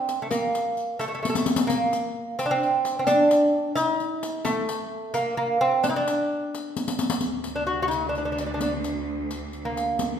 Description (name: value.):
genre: Persian modal ensemble.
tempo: 87 BPM (dotted quarters).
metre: 6/8.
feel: straight.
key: D dastgah homayun.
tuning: A4 = 440 Hz.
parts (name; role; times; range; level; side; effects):
lute; melody; 0.0-10.2 s; A3 to F#4; -23 LUFS; right 1 dB; none.
riq; percussion; 0.1-10.1 s; none; -29 LUFS; left 3 dB; none.
clear symphonic cello section; drone; 7.2-10.2 s; D2; -32 LUFS; right 1 dB; none.
room: wet recital hall reverb, RT60 1.4 s.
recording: minimal, uncompressed stereo recording.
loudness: -22 LUFS.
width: side -8 dB against mid.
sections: 0.0-7.2 A section; 7.2-10.2 B section.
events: drum fill 1.2-1.7, 6.8-7.2.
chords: none.